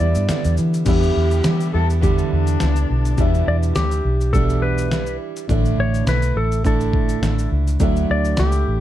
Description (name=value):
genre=acoustic pop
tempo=104 BPM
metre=4/4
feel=swing 55% on 16ths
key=unclear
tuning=A4 = 441 Hz
part: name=clean lap steel guitar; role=melody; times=0.0-8.8 s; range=G4 to D5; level=-24 LUFS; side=left 2 dB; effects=none
part: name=felt-muted upright piano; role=accompaniment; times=0.0-8.8 s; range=D4 to F#5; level=-31 LUFS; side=left 6 dB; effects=none
part: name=fingerpicked plugged-in steel-string acoustic guitar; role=accompaniment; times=0.0-8.8 s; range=E2 to E4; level=-24 LUFS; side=right 6 dB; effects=none
part: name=vintage muted fingered electric bass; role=bass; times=0.0-8.8 s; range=A1 to E3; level=-19 LUFS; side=equal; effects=none
part: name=dusty soul sampler-style drum kit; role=drums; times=0.1-8.7 s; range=crash cymbal, kick drum, shaker, snare drum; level=-22 LUFS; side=equal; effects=overdrive
part: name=dark cello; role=second line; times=0.9-3.1 s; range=D4 to A4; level=-26 LUFS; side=left 3 dB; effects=digital delay
room=light reverb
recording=dark, warm production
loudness=-16 LUFS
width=side -12 dB against mid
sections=0.9-3.2 A section; 3.2-8.8 B section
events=none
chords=0.0 Em7; 5.5 Asus4; 7.8 Dadd9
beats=0.29 | 0.86 1.44 2.02 2.60 | 3.18 3.75 4.33 4.91 | 5.49 6.07 6.65 7.23 | 7.80 8.38